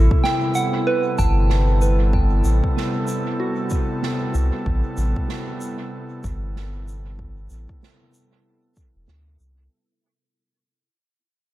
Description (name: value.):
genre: ambient dub.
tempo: 95 BPM.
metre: 4/4.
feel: swing 59% on 16ths.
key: A dorian.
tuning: A4 = 442 Hz.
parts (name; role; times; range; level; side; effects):
airy breathy pad; sustained chords; 0.0-9.7 s; C3 to A4; -25 LUFS; equal; chorus.
soft synth bell; arpeggios; 0.0-4.8 s; F#4 to A5; -26 LUFS; right 2 dB; chorus, phaser, tape echo.
warm sub bass; bass; 0.0-9.7 s; E1 to D2; -19 LUFS; equal; tube saturation.
electronic kick drum; drums; 0.1-8.9 s; none; -23 LUFS; equal; none.
snare drum and shaker; drums; 0.2-9.5 s; none; -34 LUFS; right 5 dB; dub echo.
room: small room ambience.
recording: echo-heavy mix.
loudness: -19 LUFS.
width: side -15 dB against mid.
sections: 0.0-9.7 A section.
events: fade-out 0.0-9.7.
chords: 0.0 Am9.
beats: 0.24 0.87 1.50 | 2.13 2.77 3.40 4.03 | 4.66 5.29 5.92 6.55 | 7.19 7.82 8.45 9.08.